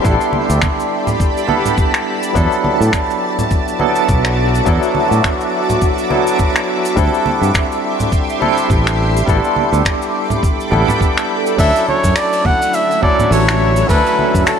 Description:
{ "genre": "sunset chillout", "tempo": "104 BPM", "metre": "4/4", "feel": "swing 57% on 16ths", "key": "unclear", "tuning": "A4 = 440 Hz", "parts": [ { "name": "barky tine electric piano", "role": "accompaniment", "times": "0.0-14.6 s", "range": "F#3 to A4", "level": "-17 LUFS", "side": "equal", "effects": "fast stereo tremolo, auto-pan, low-pass filter, tape echo" }, { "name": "shimmering ambient pad", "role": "sustained chords", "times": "0.0-14.6 s", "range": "D3 to D6", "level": "-20 LUFS", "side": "right 1 dB", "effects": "chorus, built-in reverb, phaser" }, { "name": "fingered electric bass", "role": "bass", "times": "0.0-14.4 s", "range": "A1 to A2", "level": "-15 LUFS", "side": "equal", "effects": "none" }, { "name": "electronic kick drum", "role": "drums", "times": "0.0-14.4 s", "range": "none", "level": "-17 LUFS", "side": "equal", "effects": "none" }, { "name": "vintage brush drum kit", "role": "drums", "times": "0.0-14.6 s", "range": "cabasa, finger snaps, hi-hat", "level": "-22 LUFS", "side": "left 1 dB", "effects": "none" }, { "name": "congas", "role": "percussion", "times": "0.3-14.3 s", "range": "none", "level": "-23 LUFS", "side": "right 3 dB", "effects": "none" }, { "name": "clear flugelhorn", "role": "melody", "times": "11.6-14.6 s", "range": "A4 to F#5", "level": "-15 LUFS", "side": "equal", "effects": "tape echo" } ], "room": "moderate scoring stage reverb, RT60 2.0 s, small room ambience", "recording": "none", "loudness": "-12 LUFS", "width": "side -7 dB against mid", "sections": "0.0-11.6 A section; 11.6-14.6 B section", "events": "none", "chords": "0.0 A9sus4; 2.4 E9sus4; 7.0 D9sus4; 9.3 A9sus4; 11.6 Dmaj9" }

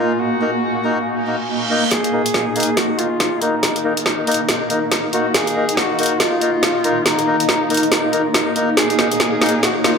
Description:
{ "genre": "deep dubstep", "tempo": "140 BPM", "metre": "4/4", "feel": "swing 60% on 16ths, half-time", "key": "Eb minor", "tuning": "A4 = 440 Hz", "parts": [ { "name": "clear duduk", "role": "melody", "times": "0.0-10.0 s", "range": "Eb4 to Ab4", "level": "-22 LUFS", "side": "left 1 dB", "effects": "low-pass filter, dub echo" }, { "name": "granular cloud pad", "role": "sustained chords", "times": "0.0-10.0 s", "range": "Bb3 to Ab5", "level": "-21 LUFS", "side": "right 1 dB", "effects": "built-in reverb" }, { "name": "melodica", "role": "stabs", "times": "0.0-9.9 s", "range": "Bb3 to Bb4", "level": "-22 LUFS", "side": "left 2 dB", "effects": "low-pass filter, dub echo" }, { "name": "reverse cymbal", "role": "sound effects", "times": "1.3-1.9 s", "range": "none", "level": "-24 LUFS", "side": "right 6 dB", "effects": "none" }, { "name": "deep house drum kit", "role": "drums", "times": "1.9-9.9 s", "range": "hi-hat, snare drum", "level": "-19 LUFS", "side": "equal", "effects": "none" }, { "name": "electronic kick drum", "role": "drums", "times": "1.9-9.7 s", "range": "none", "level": "-31 LUFS", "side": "equal", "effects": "none" } ], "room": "wet plate reverb, RT60 1.9 s", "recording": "dreamy mix soaked in reverb", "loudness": "-15 LUFS", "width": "side -6 dB against mid", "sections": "0.0-1.9 A section; 1.9-10.0 B section", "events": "filter sweep on ambient pad 0.0-1.9; reverse cymbal 1.3-1.9; build-up 1.9-10.0; drum fill 1.9-10.0; filter sweep on melodica 1.9-10.0", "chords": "0.0 Eb5" }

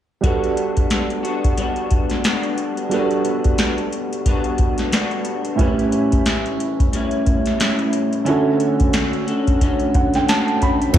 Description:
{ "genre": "indie pop, bedroom pop", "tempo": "90 BPM", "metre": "4/4", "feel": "swing 60% on 16ths", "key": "G lydian", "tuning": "A4 = 440 Hz", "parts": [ { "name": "electric guitar through a small old amp", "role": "accompaniment", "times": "0.2-11.0 s", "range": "A2 to F#4", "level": "-22 LUFS", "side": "left 2 dB", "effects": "analog chorus, vibrato effect, slapback echo" }, { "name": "warm upright piano", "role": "accompaniment", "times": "0.2-11.0 s", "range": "A2 to B5", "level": "-22 LUFS", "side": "right 4 dB", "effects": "slapback echo" }, { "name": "soft vintage rhythm box", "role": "drums", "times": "0.2-11.0 s", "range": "hi-hat, kick drum, snare drum", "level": "-19 LUFS", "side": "equal", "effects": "overdrive" }, { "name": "vintage muted picked electric bass", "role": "bass", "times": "11.0 s", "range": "G1", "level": "-10 LUFS", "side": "equal", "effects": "none" } ], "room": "light reverb, digital ambience", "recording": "live gig heard through the venue's PA, club reverb", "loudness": "-16 LUFS", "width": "side -11 dB against mid", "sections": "0.2-11.0 A section", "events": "upright piano fill 9.6-11.0", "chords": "0.2 Gmaj7; 5.6 A7; 8.3 Dmaj7" }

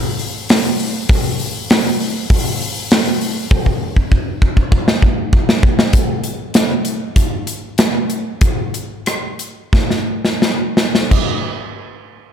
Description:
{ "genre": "rock", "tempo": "84-99 BPM", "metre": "4/4", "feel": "straight", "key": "none", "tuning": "none", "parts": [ { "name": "big rock drum kit", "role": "drums", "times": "0.2-11.3 s", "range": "china cymbal, hi-hat, kick drum, rim click, snare drum", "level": "-14 LUFS", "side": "equal", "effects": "none" } ], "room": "light reverb", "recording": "none", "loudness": "-14 LUFS", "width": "side -8 dB against mid", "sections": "0.0-5.9 A section; 5.9-11.1 B section; 11.1-12.3 C section", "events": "drum fill 3.5-5.9, 9.7-11.1; slowing down 5.9-11.1", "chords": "none" }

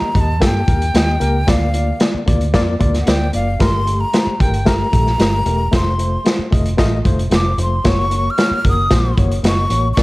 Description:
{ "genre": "uptempo 1960s-style soul", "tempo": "113 BPM", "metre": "4/4", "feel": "straight", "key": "unclear", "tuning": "A4 = 440 Hz", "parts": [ { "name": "breathy jazz flute", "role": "melody", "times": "0.0-10.0 s", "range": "F5 to F6", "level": "-21 LUFS", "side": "equal", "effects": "none" }, { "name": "barky reed electric piano", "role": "accompaniment", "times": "0.0-10.0 s", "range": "G2 to Eb5", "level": "-22 LUFS", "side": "left 2 dB", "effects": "overdrive, fast tremolo" }, { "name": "vintage muted fingered electric bass", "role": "bass", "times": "0.0-10.0 s", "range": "E1 to G2", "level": "-18 LUFS", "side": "equal", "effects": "none" }, { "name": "crunchy breakbeat drum kit", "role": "drums", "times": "0.1-10.0 s", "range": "hi-hat, kick drum, snare drum", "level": "-16 LUFS", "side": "equal", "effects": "none" } ], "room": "light reverb, small room reverb", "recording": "dark, warm production", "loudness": "-13 LUFS", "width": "side -20 dB against mid", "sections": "0.0-10.0 A section", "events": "none", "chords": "0.0 Eb; 1.5 Bb/D; 3.6 Gmadd9; 5.7 F; 7.9 Gb" }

